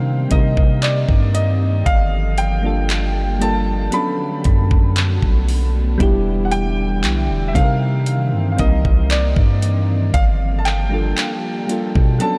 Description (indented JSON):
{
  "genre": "contemporary R&B",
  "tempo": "58 BPM",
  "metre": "4/4",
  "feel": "straight",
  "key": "unclear",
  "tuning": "A4 = 442 Hz",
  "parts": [
    { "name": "warm grand piano", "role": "melody", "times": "0.0-12.4 s", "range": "D5 to B5", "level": "-27 LUFS", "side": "equal", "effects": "lush chorus, diffuse ambient delay" },
    { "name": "soft electric-piano-like synth keys", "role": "accompaniment", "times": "0.0-12.4 s", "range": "F#3 to Bb4", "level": "-26 LUFS", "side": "equal", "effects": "chorus" },
    { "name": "glassy FM pad", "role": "sustained chords", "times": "0.0-12.4 s", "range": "D3 to A4", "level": "-30 LUFS", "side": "equal", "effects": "ensemble chorus, built-in reverb" },
    { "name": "long sustained 808-style bass", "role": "bass", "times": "0.0-12.2 s", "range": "E1 to C3", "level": "-21 LUFS", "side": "equal", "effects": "none" },
    { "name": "trap drum kit", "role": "drums", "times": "0.3-12.4 s", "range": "handclaps, hi-hat, kick drum", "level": "-21 LUFS", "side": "equal", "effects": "none" }
  ],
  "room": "light reverb, digital ambience",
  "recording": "none",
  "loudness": "-17 LUFS",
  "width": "mono",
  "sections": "0.0-12.4 A section",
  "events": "break 12.2",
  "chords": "0.0 Cm9; 1.9 Gm9; 3.9 Bm9; 6.0 Em7; 7.6 Cm9; 10.1 Gm9",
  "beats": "0.83 | 1.86 2.90 3.93 4.97 | 6.00 7.04 8.07 9.10 | 10.14 11.17 12.21"
}